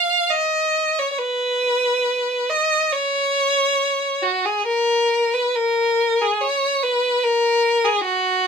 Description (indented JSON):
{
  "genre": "classical, free, expressive piece for unaccompanied violin",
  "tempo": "66-75 BPM",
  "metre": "4/4",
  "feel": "rubato",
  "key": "F# major",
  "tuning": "A4 = 440 Hz",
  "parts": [
    { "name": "clear violin", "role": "solo", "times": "0.0-8.5 s", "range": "F#4 to E#5", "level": "-17 LUFS", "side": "equal", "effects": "none" }
  ],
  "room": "light reverb",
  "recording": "close, detailed microphones",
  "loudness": "-17 LUFS",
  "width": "side -6 dB against mid",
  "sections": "0.0-8.5 A section",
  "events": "none",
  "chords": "none",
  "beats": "0.30 | 1.19 2.06 2.94 3.79 | 4.66 5.55 6.41 7.23 | 8.05"
}